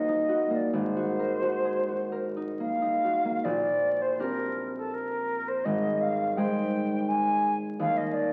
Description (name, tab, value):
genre	classical, impressionist duo for flute and harp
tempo	61-87 BPM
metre	3/4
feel	rubato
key	Bb major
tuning	A4 = 439 Hz
part	concert flute	melody	0.0-8.3 s	A4 to Ab5	-30 LUFS	equal	none
part	concert harp	accompaniment	0.0-8.3 s	Ab1 to C5	-32 LUFS	equal	none
room	wet recital hall reverb, RT60 1.3 s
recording	very old 78 rpm record, vinyl crackle, nothing above 10.5 kHz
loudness	-28 LUFS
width	mono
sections	0.0-3.4 A section; 3.4-8.3 B section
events	none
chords	0.0 Ebm6; 0.7 Ab9; 3.4 Bb69; 5.7 Abmaj7; 7.8 Eb6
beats	| 0.74 1.66 2.61 | 3.45 4.20 4.94 | 5.66 6.37 7.08 | 7.80